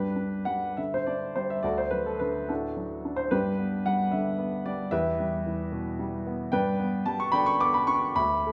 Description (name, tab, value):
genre	classical, romantic character piece for solo piano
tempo	66-78 BPM (dotted quarters)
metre	6/8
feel	rubato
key	G major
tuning	A4 = 439 Hz
part	warm grand piano	solo	0.0-8.5 s	D2 to D6	-28 LUFS	equal	none
room	wet recital hall reverb, RT60 1.4 s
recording	none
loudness	-28 LUFS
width	mono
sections	0.0-8.5 A section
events	none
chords	0.0 G; 1.6 D; 3.3 G; 4.9 Em; 6.5 G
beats	0.77 | 1.63 2.49 | 3.33 4.13 | 4.92 5.72 | 6.52 7.33 | 8.17